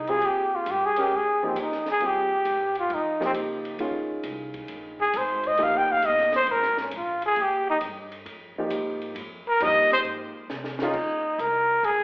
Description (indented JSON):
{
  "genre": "modal jazz",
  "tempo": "134 BPM",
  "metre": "4/4",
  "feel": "swing 68% on 8ths",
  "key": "Bb dorian",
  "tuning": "A4 = 440 Hz",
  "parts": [
    { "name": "breathy trumpet", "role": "melody", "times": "0.0-12.0 s", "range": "C4 to G5", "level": "-22 LUFS", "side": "equal", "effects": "slapback echo" },
    { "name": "upright bass", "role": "bass", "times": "0.0-12.0 s", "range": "F1 to C3", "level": "-43 LUFS", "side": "equal", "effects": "none" },
    { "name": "warm baby grand piano", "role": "accompaniment", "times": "0.1-10.9 s", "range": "Eb3 to Bb4", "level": "-30 LUFS", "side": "equal", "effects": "none" },
    { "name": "compact cocktail drum kit", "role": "drums", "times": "0.1-12.0 s", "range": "crash cymbal, hi-hat, kick drum, ride cymbal, snare drum", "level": "-39 LUFS", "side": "equal", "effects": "none" }
  ],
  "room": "light reverb, small room ambience",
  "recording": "live gig heard through the venue's PA, club reverb, telephone sound",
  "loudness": "-22 LUFS",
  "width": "side -25 dB against mid",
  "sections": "0.0-10.9 A section; 10.9-12.0 B section",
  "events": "trumpet solo 0.0-10.9; drum fill 10.5-10.9",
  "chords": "0.0 Bb9sus4; 10.9 Bbsus4"
}